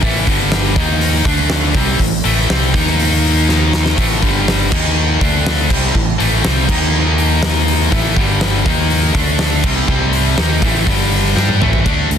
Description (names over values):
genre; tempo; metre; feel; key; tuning
hard rock; 122 BPM; 4/4; straight; unclear; A4 = 441 Hz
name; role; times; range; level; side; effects
distorted electric guitar; riff; 0.0-12.2 s; G2 to G4; -19 LUFS; right 11 dB; distortion
tight distorted guitar; riff; 0.0-12.2 s; G2 to G4; -18 LUFS; left 15 dB; distortion
fingered electric bass; bass; 0.0-12.2 s; G1 to G2; -17 LUFS; equal; none
huge arena drum kit; drums; 0.0-12.2 s; crash cymbal, hi-hat, kick drum, snare drum, toms; -17 LUFS; equal; none
room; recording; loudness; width
studio ambience; dense, heavily limited modern master; -12 LUFS; side -8 dB against mid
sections
0.0-11.9 A section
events
drum fill 3.5-4.0, 11.4-11.9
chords
0.0 A5; 0.3 G5; 0.8 D#5; 1.3 D5; 1.7 Am; 2.7 D#5; 4.0 A5; 4.2 G5; 4.7 D#5; 5.2 D5; 5.7 Am; 6.7 D#5; 7.9 A5; 8.2 G5; 8.7 D#5; 9.1 D5; 9.6 C5; 10.4 A5; 10.9 G5; 11.4 A5